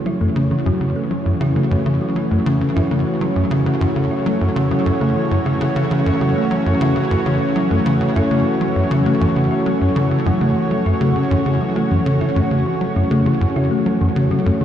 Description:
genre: ambient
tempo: 100 BPM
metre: 4/4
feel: straight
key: F# minor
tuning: A4 = 441 Hz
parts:
  - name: lush unison pad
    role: sustained chords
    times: 0.0-14.6 s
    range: E3 to C#5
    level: -19 LUFS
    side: equal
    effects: chorus
  - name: thumb-piano-like synth pluck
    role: arpeggios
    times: 0.1-14.6 s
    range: E3 to E4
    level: -23 LUFS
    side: left 1 dB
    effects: chorus, auto-pan, tape echo
  - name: tight sequencer bass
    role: riff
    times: 0.1-14.6 s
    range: F#2 to F#3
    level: -19 LUFS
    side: equal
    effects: wide subtle chorus, tape echo
room: moderate huge ambient reverb, RT60 8.4 s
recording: played on a big sound system in a bare room, stone room reverb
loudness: -15 LUFS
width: side -10 dB against mid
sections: 0.0-14.6 A section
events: none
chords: 0.0 F#m7

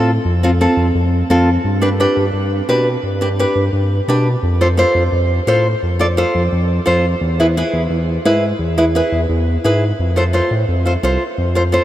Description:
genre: latin, cumbia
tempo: 173 BPM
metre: 4/4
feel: straight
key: unclear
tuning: A4 = 440 Hz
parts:
  - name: nylon-string guitar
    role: accompaniment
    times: 0.0-11.8 s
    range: C4 to D5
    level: -16 LUFS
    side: equal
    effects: none
  - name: smooth synth bass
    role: bass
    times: 0.0-11.8 s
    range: C2 to B2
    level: -17 LUFS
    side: equal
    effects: none
room: wet huge ambient reverb, RT60 7.4 s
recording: in a vast, echoing space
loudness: -13 LUFS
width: side -13 dB against mid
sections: 0.0-10.0 A section; 10.0-11.8 B section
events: none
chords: 0.0 F; 1.7 G; 4.4 F; 7.2 E; 10.0 F

